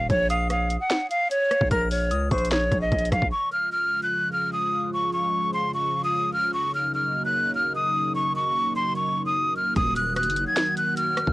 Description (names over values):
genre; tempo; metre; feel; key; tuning
hip hop, trap; 149 BPM; 4/4; half-time; unclear; A4 = 442 Hz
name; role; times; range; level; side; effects
breathy silver concert flute; melody; 0.0-11.3 s; Bb4 to Ab6; -23 LUFS; equal; cassette tape
distorted 808-style bass; bass; 0.0-3.3, 9.8-11.3 s; Eb1 to Db2; -26 LUFS; equal; distortion
trap drum kit; drums; 0.1-3.3, 9.8-11.3 s; hi-hat, kick drum, rim click, snare drum; -27 LUFS; equal; overdrive, cassette tape
delicate synth tine bell; second line; 0.3-2.9, 10.0-11.3 s; Db6 to F6; -34 LUFS; left 2 dB; chorus, phaser, analog delay
dark analog pad; sustained chords; 3.3-11.3 s; Db3 to Gb4; -30 LUFS; equal; chorus
room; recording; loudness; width
little or no reverb; home recording on cassette; -22 LUFS; side -19 dB against mid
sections
0.0-3.3 A section; 3.3-11.3 B section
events
none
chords
0.1 Bbm; 3.3 Db; 6.5 Gb6; 9.8 Ebm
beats
| 0.10 0.50 0.90 1.31 | 1.71 2.11 2.51 2.92 | 3.32 3.72 4.12 4.53 | 4.93 5.33 5.74 6.14 | 6.54 6.94 7.35 7.75 | 8.15 8.55 8.96 9.36 | 9.76 10.16 10.57 10.97